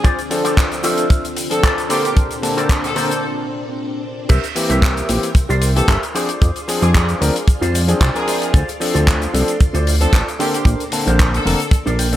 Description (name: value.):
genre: nu-disco, nu disco.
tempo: 113 BPM.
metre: 4/4.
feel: swing 54% on 16ths.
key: C mixolydian.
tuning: A4 = 440 Hz.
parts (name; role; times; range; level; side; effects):
bright studio violin section; melody; 0.0-11.7 s; G4 to A4; -26 LUFS; equal; tape echo.
string machine, full ensemble; sustained chords; 0.0-12.2 s; Bb2 to C6; -28 LUFS; left 1 dB; ensemble chorus, vintage 12-bit sampler grit, sidechain pumping.
electric guitar with an envelope filter; riff; 0.0-12.2 s; D4 to Ab5; -24 LUFS; right 1 dB; analog chorus, slapback echo.
kick drum; drums; 0.0-11.8 s; none; -13 LUFS; equal; none.
tight funk drum kit; drums; 0.0-12.2 s; crash cymbal, handclaps, hi-hat, shaker; -23 LUFS; left 1 dB; none.
clear electric grand piano; accompaniment; 0.3-12.2 s; D3 to A5; -22 LUFS; left 1 dB; sidechain pumping, slapback echo.
fat analog bass; bass; 4.3-12.2 s; F1 to F2; -17 LUFS; equal; sidechain pumping.
room: light reverb, small room ambience.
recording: none.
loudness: -14 LUFS.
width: side -13 dB against mid.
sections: 0.0-4.3 A section; 4.3-12.2 B section.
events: build-up 0.0-4.3; filter sweep on clean electric guitar 0.0-4.3; break 3.2-4.3; drop 4.3-12.2; clean electric guitar fill 7.7-8.5, 11.7-12.2.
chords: 0.0 Dm7; 1.9 Bbmaj9; 4.3 C7; 6.2 Fm6; 8.5 Dm7; 10.4 Bbmaj9.